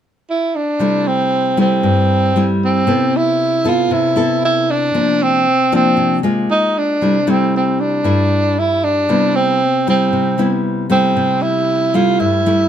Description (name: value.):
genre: bossa nova.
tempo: 116 BPM.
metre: 4/4.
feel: straight.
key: C major.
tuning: A4 = 441 Hz.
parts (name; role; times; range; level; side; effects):
breathy tenor saxophone; melody; 0.3-12.7 s; C4 to F4; -15 LUFS; right 2 dB; none.
nylon-string guitar; accompaniment; 0.8-12.7 s; G2 to A4; -17 LUFS; left 2 dB; none.
room: light reverb.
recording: none.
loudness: -13 LUFS.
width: side -9 dB against mid.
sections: 0.8-12.7 A section.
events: none.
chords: 0.0 N.C.; 0.8 C6; 2.9 Cmaj13; 4.9 C9sus4; 6.5 Bb7/Ab; 7.0 C6; 9.1 Am9/C; 11.2 C6.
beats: 0.28 | 0.80 1.32 1.83 2.35 | 2.87 3.39 3.91 4.42 | 4.94 5.46 5.98 6.49 | 7.01 7.53 8.05 8.56 | 9.08 9.60 10.12 10.63 | 11.15 11.67 12.19.